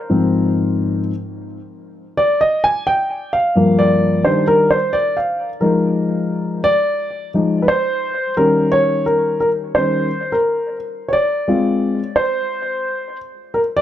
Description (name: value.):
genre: hip hop.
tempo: 87 BPM.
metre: 4/4.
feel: swing 66% on 16ths.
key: unclear.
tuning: A4 = 438 Hz.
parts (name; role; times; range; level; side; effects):
dark baby grand piano; solo; 0.0-13.8 s; G2 to Ab5; -15 LUFS; left 1 dB; analog delay.
room: moderate studio reverb, RT60 0.6 s.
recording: dark, warm production.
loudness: -15 LUFS.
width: side -11 dB against mid.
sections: 0.0-5.6 A section; 5.6-13.8 B section.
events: grand piano solo 0.0-5.6, 5.6-13.8.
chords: 0.1 Ab69; 2.5 Gm7; 4.2 Ebmaj7; 5.6 Fm7; 8.4 Eb7; 11.1 Ab6.